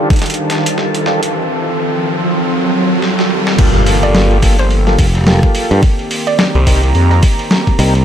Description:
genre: glitch hop.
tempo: 107 BPM.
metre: 4/4.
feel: swing 58% on 16ths.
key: G minor.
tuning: A4 = 440 Hz.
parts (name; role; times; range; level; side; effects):
warm analog pad; sustained chords; 0.0-8.0 s; Eb3 to A4; -20 LUFS; left 1 dB; chorus, sidechain pumping.
percussive tonewheel organ; stabs; 0.0-7.9 s; Bb3 to Bb4; -20 LUFS; equal; chorus vibrato, slow rotary speaker, sidechain pumping, dub echo.
riser and impact; sound effects; 0.0-5.8 s; none; -17 LUFS; right 1 dB; none.
warbly tape-like pad; texture; 0.0-1.3, 6.3-8.0 s; Eb3 to Bb5; -22 LUFS; right 2 dB; chorus, built-in reverb, sidechain pumping.
boom bap sampler-style drum kit; drums; 0.1-8.0 s; crash cymbal, hi-hat, rim click, snare drum, toms; -17 LUFS; equal; high-pass filter on snare, small room reverb, high-pass filter on hats, high-pass filter on toms, high-pass filter on cymbals.
electronic kick drum; drums; 0.1-0.2, 3.6-7.8 s; none; -12 LUFS; equal; overdrive, small room reverb.
phased detuned saw bass; bass; 3.6-7.2 s; G1 to F2; -12 LUFS; equal; phaser, tube saturation.
woody wave-folded pluck; melody; 4.0-6.5 s; C5 to D5; -21 LUFS; right 2 dB; chorus, dub echo.
modern bright fingered electric bass; bass; 5.0-8.0 s; F1 to G2; -11 LUFS; equal; none.
room: light reverb.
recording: none.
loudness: -10 LUFS.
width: side -10 dB against mid.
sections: 0.0-3.6 A section; 3.6-8.0 B section.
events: build-up 0.0-3.6; drum fill 0.0-1.3, 3.0-3.6; riser 0.0-3.6; filter sweep on analog synth pad 0.0-3.6; drop 3.6-8.0; impact 3.6-5.8.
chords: 0.0 Ebmaj9#11; 1.3 F7; 3.6 Gm9; 5.8 Cm7.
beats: 0.22 0.78 | 1.34 1.90 2.46 3.02 | 3.58 4.15 4.71 5.27 | 5.83 6.39 6.95 7.51.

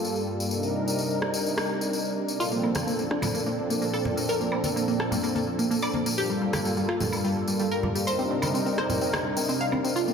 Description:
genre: progressive house.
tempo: 127 BPM.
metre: 4/4.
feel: straight.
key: unclear.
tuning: A4 = 440 Hz.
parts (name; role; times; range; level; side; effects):
lush unison pad; sustained chords; 0.0-10.1 s; G2 to Bb4; -28 LUFS; equal; chorus.
tambourine; percussion; 0.0-10.1 s; none; -34 LUFS; left 3 dB; none.
electronic rim click; drums; 1.2-9.2 s; none; -35 LUFS; equal; low-pass filter on snare, small room ambience.
wide unison pluck; arpeggios; 2.4-10.1 s; G3 to F5; -27 LUFS; equal; lush chorus, ping-pong delay.
woodblock and congas; percussion; 2.6-9.8 s; none; -35 LUFS; right 1 dB; none.
room: wet church reverb, RT60 2.7 s.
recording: dreamy mix soaked in reverb.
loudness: -24 LUFS.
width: side -6 dB against mid.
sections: 0.0-10.1 A section.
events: none.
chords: 0.0 Gm7; 0.5 Cm7; 2.4 Bbmaj7; 6.2 Gm7; 8.1 Cm7.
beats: 0.04 | 0.51 0.98 1.46 1.93 | 2.40 2.87 3.35 3.82 | 4.29 4.76 5.24 5.71 | 6.18 6.65 7.13 7.60 | 8.07 8.54 9.02 9.49 | 9.96.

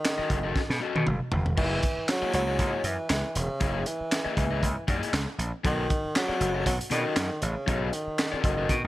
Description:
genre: funk.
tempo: 118 BPM.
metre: 4/4.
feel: swing 56% on 16ths.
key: unclear.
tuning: A4 = 437 Hz.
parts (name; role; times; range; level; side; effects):
breathy tenor saxophone; melody; 0.0-8.9 s; C#3 to F#3; -30 LUFS; right 1 dB; none.
crunchy breakbeat drum kit; drums; 0.0-8.8 s; crash cymbal, handclaps, hi-hat, kick drum, snare drum, toms; -28 LUFS; equal; none.
raw garage guitar; accompaniment; 0.2-8.7 s; A#3 to D#5; -32 LUFS; left 5 dB; overdrive.
gritty slap bass; bass; 0.2-8.9 s; E1 to B2; -30 LUFS; equal; overdrive.
room: light reverb, studio reverb.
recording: none.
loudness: -25 LUFS.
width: side -16 dB against mid.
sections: 0.0-1.6 A section; 1.6-8.9 A section.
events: drum fill 0.6-1.6.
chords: 0.0 B9; 1.6 F#13; 5.6 B9.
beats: 0.05 0.56 1.07 | 1.57 2.08 2.59 3.10 | 3.61 4.12 4.63 5.13 | 5.64 6.15 6.66 7.17 | 7.68 8.19 8.70.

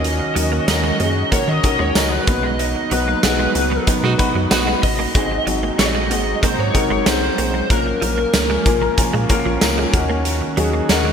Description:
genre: 1980s-style pop.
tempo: 94 BPM.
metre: 4/4.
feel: straight.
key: Eb minor.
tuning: A4 = 441 Hz.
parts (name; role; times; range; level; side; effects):
lead guitar through a small cranked amp; melody; 0.0-8.9 s; Bb4 to Eb5; -22 LUFS; equal; overdrive, analog chorus, digital delay.
dark baby grand piano; accompaniment; 0.0-11.1 s; Bb3 to Bb5; -22 LUFS; left 3 dB; lush chorus.
chorused pulse-width pad; sustained chords; 0.0-11.1 s; Eb3 to Gb4; -26 LUFS; right 1 dB; lush chorus.
rubbery square bass; bass; 0.0-11.1 s; Ab1 to Eb3; -23 LUFS; equal; none.
big rock drum kit; drums; 0.0-11.0 s; hi-hat, kick drum, snare drum; -20 LUFS; right 1 dB; gated reverb.
direct-recorded clean electric guitar; riff; 0.2-11.1 s; F3 to Bb3; -27 LUFS; right 5 dB; ensemble chorus, digital delay.
tambourine; percussion; 0.7-11.0 s; none; -32 LUFS; right 5 dB; none.
warm horn section; stabs; 4.0-4.7 s; B3 to F#4; -26 LUFS; right 4 dB; none.
room: moderate lush hall reverb, RT60 2.9 s.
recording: bright 1980s-style digital production.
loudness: -15 LUFS.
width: side -7 dB against mid.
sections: 0.0-11.1 A section.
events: band accent 2.6-5.2; grand piano fill 8.3-10.3.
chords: 0.0 Ebm7; 2.3 B; 5.2 Ab7; 7.7 Bbm; 9.9 Ebm7.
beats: | 0.04 0.68 1.32 1.96 | 2.60 3.24 3.88 4.51 | 5.15 5.79 6.43 7.07 | 7.71 8.34 8.98 9.62 | 10.26 10.90.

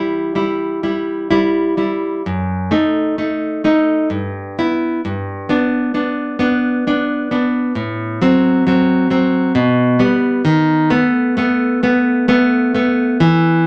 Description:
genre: romantic piece for solo classical guitar.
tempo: 65 BPM.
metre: 3/4.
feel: rubato.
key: unclear.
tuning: A4 = 440 Hz.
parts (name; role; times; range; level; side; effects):
nylon-string guitar; solo; 0.0-13.7 s; F#2 to E4; -16 LUFS; equal; none.
room: wet club reverb, RT60 0.6 s.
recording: none.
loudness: -16 LUFS.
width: mono.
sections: 0.0-13.7 A section.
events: none.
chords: 0.0 Em; 2.3 D#dim/F#; 4.1 Em/G; 5.0 G; 7.8 F#dim/A; 9.6 G/B; 10.5 B7/D#.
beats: 0.38 1.32 | 2.26 3.19 4.12 | 5.04 5.95 6.86 | 7.76 8.65 9.56 | 10.46 11.37 12.29 | 13.21.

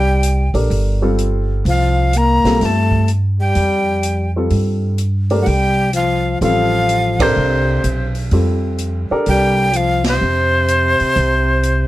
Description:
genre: modal jazz.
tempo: 126 BPM.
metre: 4/4.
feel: swing 66% on 8ths.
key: unclear.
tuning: A4 = 440 Hz.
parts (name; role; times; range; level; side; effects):
breathy bright jazz flute; melody; 0.0-11.9 s; C5 to Bb5; -18 LUFS; equal; none.
warm trombone; second line; 0.0-11.9 s; C3 to Bb3; -20 LUFS; left 2 dB; none.
upright bass; bass; 0.0-11.9 s; G1 to G2; -17 LUFS; equal; none.
open jazz drum kit; drums; 0.2-11.8 s; hi-hat, kick drum, ride cymbal, snare drum; -26 LUFS; right 1 dB; none.
dark baby grand piano; accompaniment; 0.5-9.7 s; G3 to Bb4; -20 LUFS; equal; none.
room: little or no reverb.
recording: none.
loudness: -13 LUFS.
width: side -16 dB against mid.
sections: 0.0-11.9 A section.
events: band accent 7.1, 10.0.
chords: 0.0 C7sus4; 5.5 Fadd9.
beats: 0.23 0.71 1.18 | 1.66 2.13 2.61 3.08 | 3.56 4.03 4.51 4.99 | 5.46 5.94 6.41 6.89 | 7.36 7.84 8.31 8.79 | 9.26 9.74 10.21 10.69 | 11.16 11.64.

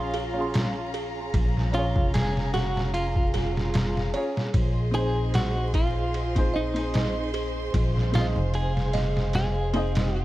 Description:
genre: trip hop.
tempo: 75 BPM.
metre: 4/4.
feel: swing 55% on 16ths.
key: unclear.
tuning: A4 = 440 Hz.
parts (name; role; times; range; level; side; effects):
clean electric guitar; melody; 0.0-10.2 s; Eb4 to Ab4; -32 LUFS; equal; tremolo, tape echo.
warm upright piano; accompaniment; 0.0-10.2 s; C4 to C6; -33 LUFS; left 1 dB; tremolo.
warm studio violin section; sustained chords; 0.0-10.2 s; Db4 to C6; -34 LUFS; left 1 dB; none.
upright bass; bass; 0.0-10.2 s; F1 to Bb1; -28 LUFS; equal; none.
music box; arpeggios; 0.1-10.2 s; Ab4 to Eb5; -36 LUFS; right 6 dB; vintage 12-bit sampler grit, digital delay.
trip hop sampler-style drum kit; drums; 0.1-10.1 s; kick drum, ride cymbal, snare drum; -27 LUFS; equal; none.
room: small room ambience.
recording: dark, warm production, vinyl crackle.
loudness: -23 LUFS.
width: side -16 dB against mid.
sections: 0.0-10.2 A section.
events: kick drops out 9.3-10.2.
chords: 0.0 Bbm7; 4.5 Ab/Bb.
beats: 0.54 | 1.34 2.14 2.94 3.74 | 4.54 5.34 6.14 6.94 | 7.74 8.54 9.34 10.14.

